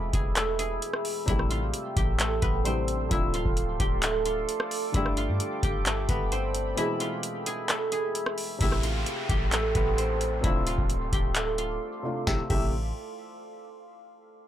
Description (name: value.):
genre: hip hop, trap.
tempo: 131 BPM.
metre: 4/4.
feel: half-time.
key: A minor.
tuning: A4 = 440 Hz.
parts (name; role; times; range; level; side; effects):
guzheng; melody; 0.0-13.0 s; A3 to G#5; -31 LUFS; right 1 dB; none.
dark baby grand piano; accompaniment; 0.0-12.7 s; B2 to G#4; -35 LUFS; left 1 dB; none.
deep dark ambient pad; sustained chords; 0.0-12.5 s; G#4 to E6; -35 LUFS; right 1 dB; chorus, built-in reverb.
warm 808-style bass; bass; 0.0-12.9 s; D1 to G2; -30 LUFS; equal; none.
booming analog drum machine; drums; 0.1-12.7 s; crash cymbal, handclaps, hi-hat, kick drum, rim click, snare drum; -28 LUFS; equal; none.
downlifter; sound effects; 8.6-12.3 s; none; -38 LUFS; equal; none.
room: little or no reverb.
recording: dry, gritty hardware recording, transformer saturation.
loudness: -25 LUFS.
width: side -11 dB against mid.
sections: 0.0-8.6 A section; 8.6-12.3 B section; 12.3-14.1 C section.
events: kick muted 6.8-8.6; break 11.8-12.3.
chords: 0.0 E; 1.3 Am7; 3.1 Dm7; 4.9 Gadd9; 6.8 E; 8.6 Am7; 10.4 Dm7; 12.3 Am7.